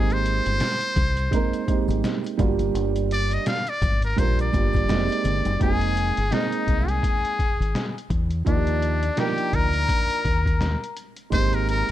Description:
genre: hip hop, jazz-hop.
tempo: 84 BPM.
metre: 4/4.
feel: swing 59% on 16ths.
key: F dorian.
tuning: A4 = 441 Hz.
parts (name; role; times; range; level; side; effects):
trumpet with metal mute; melody; 0.0-11.9 s; D4 to F5; -26 LUFS; left 1 dB; none.
dark upright piano; accompaniment; 0.0-11.9 s; Eb3 to Bb4; -26 LUFS; right 8 dB; none.
deep dub fingered electric bass; bass; 0.0-11.9 s; F1 to E2; -24 LUFS; left 1 dB; none.
trip hop sampler-style drum kit; drums; 0.1-11.9 s; hi-hat, kick drum, snare drum; -25 LUFS; left 1 dB; none.
maracas and congas; percussion; 0.1-5.6, 11.3-11.9 s; none; -37 LUFS; left 3 dB; none.
reedy concert flute; second line; 5.6-11.9 s; D5 to C6; -32 LUFS; left 11 dB; none.
room: small room ambience.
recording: dark, warm production.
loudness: -20 LUFS.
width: side -13 dB against mid.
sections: 0.0-5.6 A section; 5.6-11.9 B section.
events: muted trumpet solo 0.0-5.6.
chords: 0.0 Abmaj9; 2.4 Gm7; 4.9 Fm11; 8.5 Ebmaj9; 11.3 Abmaj9.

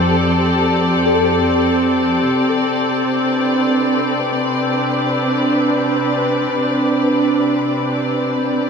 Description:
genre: ambient.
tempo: free time.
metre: none.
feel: none.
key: unclear.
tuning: A4 = 440 Hz.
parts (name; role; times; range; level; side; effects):
muted studio string section; sustained chords; 0.0-8.7 s; C3 to D5; -15 LUFS; equal; shimmer reverb.
clear studio double bass section; bass; 0.0-2.2 s; F2; -26 LUFS; left 1 dB; none.
soft round pluck; arpeggios; 1.1-2.7 s; A4; -24 LUFS; left 2 dB; ensemble chorus, tape echo, shimmer reverb.
room: wet lush hall reverb, RT60 2.8 s.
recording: none.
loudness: -14 LUFS.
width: side -6 dB against mid.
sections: 0.0-2.3 A section; 2.3-8.7 B section.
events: none.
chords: 0.0 F; 2.3 Csus2.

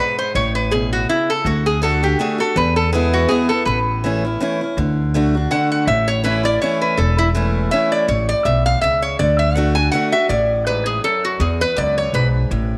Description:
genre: bluegrass.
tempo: 163 BPM.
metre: 3/4.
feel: swing 55% on 8ths.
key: A major.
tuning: A4 = 443 Hz.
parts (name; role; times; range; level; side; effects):
lap resonator guitar; melody; 0.0-12.3 s; E4 to G#5; -21 LUFS; equal; none.
picked acoustic archtop guitar; accompaniment; 0.0-12.8 s; E2 to F#4; -24 LUFS; equal; none.
upright bass; bass; 0.3-12.8 s; E1 to E2; -22 LUFS; equal; none.
room: moderate plate reverb, RT60 2.6 s.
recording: none.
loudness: -18 LUFS.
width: mono.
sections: 0.0-4.8 A section; 4.8-12.8 B section.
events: none.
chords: 0.4 A; 1.5 D; 2.6 E; 3.7 A; 4.8 D; 5.9 A; 9.2 D; 11.4 E.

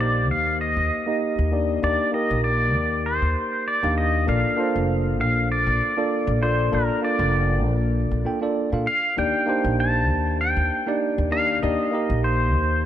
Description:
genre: sunset chillout.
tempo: 98 BPM.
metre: 4/4.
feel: swing 54% on 16ths.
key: Eb lydian.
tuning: A4 = 440 Hz.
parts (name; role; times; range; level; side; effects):
pedal steel guitar; melody; 0.0-12.9 s; Bb4 to A5; -24 LUFS; equal; tape echo.
tine electric piano; accompaniment; 0.0-12.9 s; Bb3 to G5; -24 LUFS; moving between left 5 dB and right 3 dB; auto-pan, low-pass filter, tape echo.
upright bass; bass; 0.0-12.9 s; F1 to Bb2; -23 LUFS; equal; tube saturation.
room: light reverb, small room ambience.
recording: nothing above 10.6 kHz.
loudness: -20 LUFS.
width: side -11 dB against mid.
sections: 0.0-12.9 A section.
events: filter sweep on tine electric piano 0.0-12.9.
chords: 0.0 Ebmaj7; 4.3 Bbmaj7; 9.2 Ebmaj7.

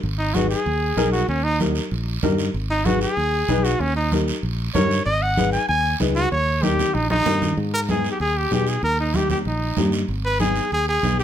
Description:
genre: latin, cumbia.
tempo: 191 BPM.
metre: 4/4.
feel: straight.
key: G# harmonic minor.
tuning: A4 = 435 Hz.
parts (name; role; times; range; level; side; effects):
fingered electric bass; bass; 0.0-11.2 s; G#1 to B2; -24 LUFS; right 1 dB; none.
congas; percussion; 0.0-11.2 s; none; -26 LUFS; right 1 dB; none.
guiro; percussion; 0.0-11.2 s; none; -33 LUFS; right 6 dB; none.
clear trumpet; melody; 0.2-11.2 s; C#4 to G#5; -22 LUFS; equal; plate reverb.
dark upright piano; accompaniment; 0.3-11.2 s; A#3 to B4; -25 LUFS; left 4 dB; none.
room: light reverb.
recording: none.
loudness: -19 LUFS.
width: side -10 dB against mid.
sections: 0.0-7.6 A section; 7.6-11.2 B section.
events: trumpet solo 0.0-7.6; drum fill 7.1-7.6.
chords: 0.0 G#m; 1.3 D#; 2.5 G#m; 3.8 D#7; 5.1 G#m; 6.3 D#7; 7.6 G#m; 8.8 D#; 10.1 G#m.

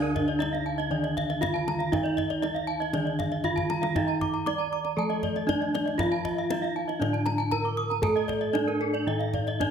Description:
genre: Balinese gamelan.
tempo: 118 BPM.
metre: 4/4.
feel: straight.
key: D pelog.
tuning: A4 = 441 Hz.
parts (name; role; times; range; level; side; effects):
gamelan-type bronze metallophone; melody; 0.0-9.7 s; D4 to D5; -30 LUFS; right 2 dB; none.
gamelan-type bronze metallophone; accompaniment; 0.0-9.7 s; D3 to A3-30c; -36 LUFS; left 2 dB; none.
gamelan-type bronze metallophone; arpeggios; 0.0-9.7 s; A4-30c to Eb6+20c; -32 LUFS; left 4 dB; none.
gamelan-type bronze metallophone; arpeggios; 0.0-9.3 s; Bb4-20c to D6; -35 LUFS; right 7 dB; none.
gamelan-type bossed gongs; bass; 0.0-9.7 s; A2-30c to A4-30c; -31 LUFS; right 1 dB; none.
kendang; percussion; 0.0-9.7 s; none; -35 LUFS; left 2 dB; none.
room: moderate recital hall reverb, RT60 1.6 s.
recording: none.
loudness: -25 LUFS.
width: side -7 dB against mid.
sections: 0.0-9.7 A section.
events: drum fill 3.5-4.0.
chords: none.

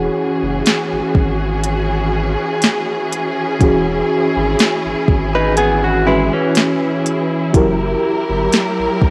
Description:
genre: contemporary R&B.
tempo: 61 BPM.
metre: 4/4.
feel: swing 54% on 16ths.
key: E major.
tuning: A4 = 440 Hz.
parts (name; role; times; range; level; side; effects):
FM electric piano with tremolo; accompaniment; 0.0-9.1 s; E3 to F#5; -21 LUFS; equal; cassette tape.
warm studio string section; sustained chords; 0.0-9.1 s; E3 to A#4; -23 LUFS; equal; cassette tape.
round analog bass; bass; 0.0-9.1 s; E1 to A#1; -24 LUFS; equal; none.
smooth R&B drum kit; drums; 0.7-9.1 s; hi-hat, kick drum, snare drum; -17 LUFS; equal; overdrive.
direct-recorded clean electric guitar; arpeggios; 5.3-7.8 s; E3 to B4; -20 LUFS; equal; tremolo, cassette tape, analog delay.
room: light reverb, digital ambience.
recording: home recording on cassette.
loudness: -16 LUFS.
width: mono.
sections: 0.0-9.1 A section.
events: none.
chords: 0.0 E69; 7.5 F#7b9.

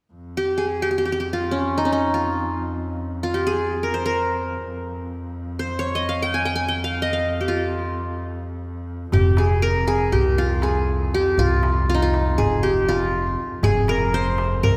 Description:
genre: Turkish makam ensemble.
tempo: free time.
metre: none.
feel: none.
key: F makam ussak.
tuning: A4 = 440 Hz.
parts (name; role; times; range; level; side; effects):
clear double bass; drone; 0.1-14.8 s; F2; -32 LUFS; equal; none.
qanun; melody; 0.4-14.8 s; Db4 to Ab5; -24 LUFS; equal; none.
upright bass; bass; 9.1-14.8 s; F1 to C2; -24 LUFS; equal; none.
darbuka; percussion; 9.1-14.8 s; none; -28 LUFS; equal; none.
room: wet concert hall reverb, RT60 2.3 s.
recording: recorded in a church or concert hall.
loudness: -22 LUFS.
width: mono.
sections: 0.1-9.1 A section; 9.1-14.8 B section.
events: none.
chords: none.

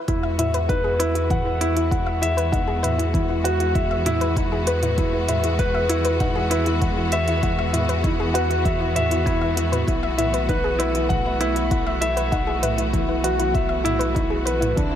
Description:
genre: piano and strings electronica.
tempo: 98 BPM.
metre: 4/4.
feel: straight.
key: E major.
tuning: A4 = 440 Hz.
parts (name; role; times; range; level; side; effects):
dark concert grand piano; riff; 0.0-14.9 s; D4 to F#5; -23 LUFS; equal; digital delay.
warm symphonic string section; sustained chords; 0.1-15.0 s; D3 to F#4; -28 LUFS; equal; none.
soft round pluck; arpeggios; 0.1-15.0 s; E3 to E5; -28 LUFS; left 2 dB; chorus, sidechain pumping, digital delay.
warm sub bass; bass; 0.1-15.0 s; B1 to E2; -26 LUFS; equal; sidechain pumping, high-pass filter.
electronic kick drum; drums; 0.1-14.9 s; none; -25 LUFS; equal; none.
organic electronic drum kit; drums; 0.1-14.9 s; hi-hat, toms; -30 LUFS; right 3 dB; none.
room: light reverb.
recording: none.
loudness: -19 LUFS.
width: side -10 dB against mid.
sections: 0.1-15.0 A section.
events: drop 0.1-15.0.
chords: 0.1 Eadd9; 9.9 B7sus4.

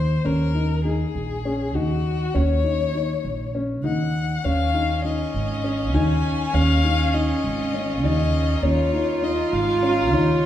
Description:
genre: contemporary instrumental, chamber music in an uneven meter.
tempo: 200 BPM (eighths).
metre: 7/8.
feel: straight.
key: unclear.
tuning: A4 = 440 Hz.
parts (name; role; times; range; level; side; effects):
dark violin; melody; 0.0-10.5 s; Gb4 to Ab5; -27 LUFS; left 6 dB; none.
dark baby grand piano; arpeggios; 0.0-10.5 s; Db4 to Eb4; -27 LUFS; left 4 dB; none.
upright bass; bass; 0.0-10.5 s; Ab1 to Eb2; -23 LUFS; right 1 dB; none.
dark viola; second line; 4.4-10.5 s; Db4 to F4; -25 LUFS; right 2 dB; none.
bright chamber string section; sustained chords; 4.4-10.5 s; Eb3 to F4; -32 LUFS; right 2 dB; none.
room: wet recital hall reverb, RT60 1.5 s.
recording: heard from further back in the room, faint mains hum.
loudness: -20 LUFS.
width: side -11 dB against mid.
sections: 0.0-10.5 A section.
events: none.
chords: 0.0 Ebm7; 4.4 Dbadd9.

